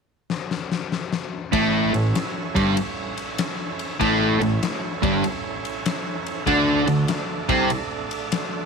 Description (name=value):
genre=blues rock power trio and southern rock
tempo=97 BPM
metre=4/4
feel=swing 66% on 8ths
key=A mixolydian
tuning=A4 = 437 Hz
part: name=huge arena drum kit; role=drums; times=0.3-8.5 s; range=kick drum, ride cymbal, snare drum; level=-28 LUFS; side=left 5 dB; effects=none
part: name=overdriven tonewheel organ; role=sustained chords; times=1.5-8.7 s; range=A3 to D5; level=-31 LUFS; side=right 10 dB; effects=slow rotary speaker
part: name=crunchy overdriven guitar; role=riff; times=1.5-7.7 s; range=G2 to D4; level=-21 LUFS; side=equal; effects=none
part: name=fuzz fingered electric bass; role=bass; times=1.5-7.7 s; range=G1 to D2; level=-27 LUFS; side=right 1 dB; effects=overdrive
room=moderate echo chamber reverb, RT60 2.2 s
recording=1960s-style stereo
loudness=-20 LUFS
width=side -5 dB against mid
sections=0.0-1.5 A section; 1.5-8.7 B section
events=drum fill 0.3-1.5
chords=0.0 N.C.; 1.5 A; 6.5 D5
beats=0.29 0.91 | 1.53 2.15 2.77 3.38 | 4.00 4.62 5.24 5.85 | 6.47 7.08 7.70 8.31